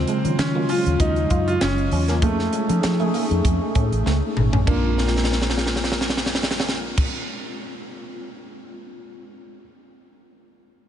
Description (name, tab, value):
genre	polished 1980s jazz-funk pop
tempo	98 BPM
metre	4/4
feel	swing 54% on 16ths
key	Bb minor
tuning	A4 = 442 Hz
part	clear concert grand piano	melody	0.0-7.1 s	A3 to F4	-27 LUFS	right 1 dB	none
part	mellow tine electric piano	accompaniment	0.0-9.6 s	Db3 to G#4	-27 LUFS	left 1 dB	medium stereo tremolo, ensemble chorus
part	vintage muted fingered electric bass	bass	0.0-7.0 s	Gb1 to F3	-23 LUFS	equal	none
part	electric guitar at the edge of break-up	riff	0.1-6.1 s	Ab3 to F4	-31 LUFS	right 4 dB	none
part	crisp fusion drum kit	drums	0.1-8.6 s	crash cymbal, hi-hat, kick drum, snare drum, toms	-24 LUFS	equal	none
room	moderate huge ambient reverb, RT60 7.2 s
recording	dreamy mix soaked in reverb, nothing above 10.6 kHz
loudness	-18 LUFS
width	side -10 dB against mid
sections	0.0-4.7 A section; 4.7-7.1 B section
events	drum fill 4.1-4.7, 5.0-7.0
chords	0.0 Ebm11; 2.2 F7alt; 4.7 Bb7